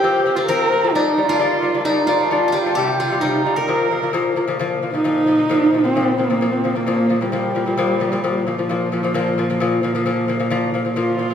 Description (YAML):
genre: mongolian traditional, Mongolian folk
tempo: 132 BPM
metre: 4/4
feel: straight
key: Bb zhi mode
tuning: A4 = 440 Hz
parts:
  - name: warm horsehead fiddle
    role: melody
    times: 0.0-11.3 s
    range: F3 to Bb4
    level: -20 LUFS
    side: right 2 dB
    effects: none
  - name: steel-string zither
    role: second line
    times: 0.0-5.9 s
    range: Eb4 to C5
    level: -23 LUFS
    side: right 2 dB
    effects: none
  - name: lute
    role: arpeggios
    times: 0.0-11.3 s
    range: Bb2 to D4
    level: -20 LUFS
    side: left 4 dB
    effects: none
  - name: rich cello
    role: drone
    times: 4.6-11.3 s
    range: Bb2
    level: -26 LUFS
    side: right 2 dB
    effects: none
room: wet recital hall reverb, RT60 1.8 s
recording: recorded in a church or concert hall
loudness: -16 LUFS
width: side -8 dB against mid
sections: 0.0-4.6 A section; 4.6-11.3 B section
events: none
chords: 0.0 F5; 0.9 G5; 2.8 C5; 3.7 Bb5